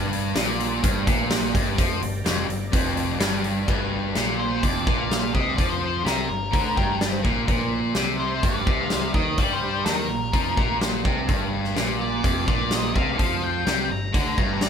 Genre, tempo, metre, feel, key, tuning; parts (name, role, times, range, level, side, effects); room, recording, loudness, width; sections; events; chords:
classic rock; 126 BPM; 4/4; straight; G minor; A4 = 440 Hz
overdriven tonewheel organ; sustained chords; 0.0-3.7 s; D4 to D5; -37 LUFS; right 1 dB
distorted electric guitar; riff; 0.0-14.7 s; F2 to G3; -27 LUFS; left 7 dB; overdrive
raw garage guitar; riff; 0.0-14.7 s; F2 to G3; -29 LUFS; right 7 dB; overdrive
modern bright picked electric bass; bass; 0.0-14.7 s; F1 to G2; -31 LUFS; right 1 dB
huge arena drum kit; drums; 0.1-14.7 s; crash cymbal, hi-hat, kick drum, snare drum; -24 LUFS; equal
octave-fuzz lead guitar; melody; 4.4-14.7 s; Bb4 to Bb5; -28 LUFS; left 2 dB; distortion
electric slide guitar; second line; 6.8-7.7, 14.6-14.7 s; Bb4 to G5; -32 LUFS; left 3 dB
light reverb; band playing live in one room; -21 LUFS; side -7 dB against mid
0.0-3.7 A section; 3.7-14.7 B section
0.0 Gm; 7.5 Bb5; 11.3 Gm